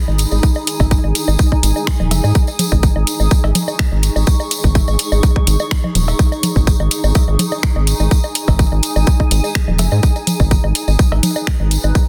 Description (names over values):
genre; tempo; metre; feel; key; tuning
minimal techno; 125 BPM; 4/4; swing 53% on 16ths; G# minor; A4 = 440 Hz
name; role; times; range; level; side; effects
granular cloud pad; texture; 0.0-12.1 s; D#4 to C#6; -26 LUFS; equal; built-in reverb, sidechain pumping
rubbery square bass; bass; 0.1-11.9 s; D#1 to G#2; -17 LUFS; equal; sidechain pumping
woodblock, cowbell and congas; percussion; 0.1-11.9 s; none; -24 LUFS; equal; delay
garage drum kit; drums; 0.2-11.8 s; finger snaps, hi-hat; -22 LUFS; equal; soft clipping on snare
tambourine; percussion; 0.2-12.1 s; none; -28 LUFS; equal; none
electronic kick drum; drums; 0.4-12.1 s; none; -16 LUFS; equal; overdrive
room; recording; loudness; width
digital ambience; dense, heavily limited modern master; -15 LUFS; mono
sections
0.0-12.1 A section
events
none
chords
0.0 G#sus4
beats
| 0.43 0.91 1.39 1.87 | 2.35 2.83 3.31 3.79 | 4.27 4.75 5.23 5.71 | 6.19 6.67 7.15 7.63 | 8.11 8.59 9.07 9.55 | 10.03 10.51 10.99 11.47 | 11.95